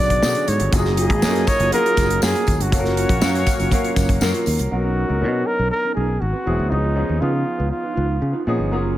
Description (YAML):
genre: polished 1980s jazz-funk pop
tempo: 120 BPM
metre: 4/4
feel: straight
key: F# major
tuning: A4 = 440 Hz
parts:
  - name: breathy flugelhorn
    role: melody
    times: 0.0-8.4 s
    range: D#4 to D5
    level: -23 LUFS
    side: equal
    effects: none
  - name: clear horn section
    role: second line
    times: 0.0-4.4 s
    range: A#3 to D#5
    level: -28 LUFS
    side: left 3 dB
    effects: none
  - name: warm concert grand piano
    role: accompaniment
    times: 0.0-9.0 s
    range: C#3 to E#5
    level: -24 LUFS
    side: left 1 dB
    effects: lush chorus
  - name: mellow electric guitar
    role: riff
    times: 0.0-9.0 s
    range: A#3 to C#5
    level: -29 LUFS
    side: right 6 dB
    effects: lush chorus
  - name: fingered electric bass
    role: bass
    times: 0.0-9.0 s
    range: E1 to C#3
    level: -21 LUFS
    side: equal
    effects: none
  - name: modern studio drum kit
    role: drums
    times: 0.1-4.7 s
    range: hi-hat, kick drum, snare drum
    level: -21 LUFS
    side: equal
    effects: none
  - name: tambourine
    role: percussion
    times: 0.2-4.6 s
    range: none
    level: -33 LUFS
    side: left 8 dB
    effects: none
room: studio reverb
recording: none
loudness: -17 LUFS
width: side -14 dB against mid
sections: 0.0-4.7 A section; 4.7-9.0 B section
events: none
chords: 0.0 Bmadd9; 0.7 F#maj9; 2.7 F#maj7; 4.7 Bmaj9; 6.2 G#7alt; 6.7 C#9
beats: 0.23 | 0.73 1.23 1.73 2.22 | 2.72 3.22 3.72 4.22 | 4.71 5.21 5.71 6.21 | 6.72 7.22 7.72 8.22 | 8.72